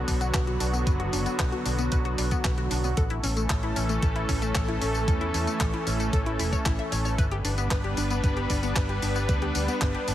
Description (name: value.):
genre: italo disco.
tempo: 114 BPM.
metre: 4/4.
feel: straight.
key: unclear.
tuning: A4 = 440 Hz.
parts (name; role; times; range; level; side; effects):
warm analog pad; sustained chords; 0.0-10.1 s; D3 to B4; -29 LUFS; equal; chorus.
fingered electric bass with an envelope filter; bass; 0.0-10.1 s; E1 to E2; -29 LUFS; equal; tube saturation.
analog pluck; arpeggios; 0.1-10.1 s; A3 to E5; -34 LUFS; left 3 dB; chorus, ping-pong delay.
clean 12-bit digital drum machine; drums; 0.1-10.1 s; handclaps, hi-hat, tambourine; -33 LUFS; equal; none.
electronic kick drum; drums; 0.1-9.9 s; none; -27 LUFS; equal; none.
room: light reverb.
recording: heavily compressed radio sound.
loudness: -24 LUFS.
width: side -12 dB against mid.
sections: 0.0-10.1 A section.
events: none.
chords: 0.0 Bm; 3.0 A; 7.2 G.